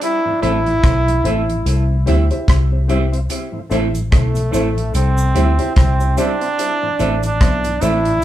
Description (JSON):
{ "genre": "roots reggae", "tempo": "73 BPM", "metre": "4/4", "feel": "swing 57% on 16ths", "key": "A minor", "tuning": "A4 = 441 Hz", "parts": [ { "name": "brilliant trombone", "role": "melody", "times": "0.0-8.2 s", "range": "A3 to E4", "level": "-19 LUFS", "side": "right 2 dB", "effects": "analog delay" }, { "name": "damped 70s drum kit", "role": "drums", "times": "0.0-8.2 s", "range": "hi-hat, kick drum, rim click", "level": "-17 LUFS", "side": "equal", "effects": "none" }, { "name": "tonewheel organ", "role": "accompaniment", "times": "0.3-8.1 s", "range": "A2 to E4", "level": "-29 LUFS", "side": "left 2 dB", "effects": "analog delay" }, { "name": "clean electric guitar", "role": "accompaniment", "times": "0.4-8.0 s", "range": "G3 to E4", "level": "-27 LUFS", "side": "right 6 dB", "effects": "analog delay" }, { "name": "warm upright piano", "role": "stabs", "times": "0.4-8.0 s", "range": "E4 to E5", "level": "-24 LUFS", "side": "left 1 dB", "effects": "analog delay" }, { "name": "vintage muted fingered electric bass", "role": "bass", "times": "0.4-8.2 s", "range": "A1 to D2", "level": "-17 LUFS", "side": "equal", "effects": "none" }, { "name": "cabasa", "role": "percussion", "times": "3.3-8.2 s", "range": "none", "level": "-36 LUFS", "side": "equal", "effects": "analog delay" } ], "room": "moderate studio reverb, RT60 0.6 s", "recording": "band playing live in one room", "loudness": "-14 LUFS", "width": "side -12 dB against mid", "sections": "0.0-8.2 A section", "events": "none", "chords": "0.0 Am; 1.7 C; 3.3 Am; 4.9 C; 6.6 Am" }